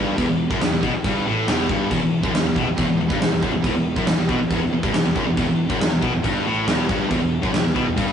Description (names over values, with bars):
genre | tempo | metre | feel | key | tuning
heavy metal | 139 BPM | 4/4 | straight | E minor | A4 = 441 Hz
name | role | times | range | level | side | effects
heavy high-gain guitar | riff | 0.0-8.1 s | E2 to B2 | -25 LUFS | right 5 dB | distortion
high-gain distorted guitar | riff | 0.0-8.1 s | E2 to B2 | -22 LUFS | left 3 dB | distortion
sludgy distorted guitar | riff | 0.0-8.1 s | E2 to B2 | -30 LUFS | right 3 dB | none
fuzz picked electric bass | bass | 0.0-8.1 s | E1 to B1 | -30 LUFS | equal | overdrive
big rock drum kit | drums | 0.2-8.1 s | crash cymbal, kick drum, snare drum | -23 LUFS | equal | none
room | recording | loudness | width
moderate studio reverb, RT60 0.6 s | rough rehearsal-room recording, warm saturation, nothing above 10.4 kHz | -18 LUFS | side -8 dB against mid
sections
0.0-8.1 A section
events
none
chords
0.0 Em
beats
| 0.18 0.61 1.04 1.48 | 1.91 2.34 2.77 3.21 | 3.64 4.07 4.51 4.94 | 5.37 5.81 6.24 6.67 | 7.11 7.54 7.97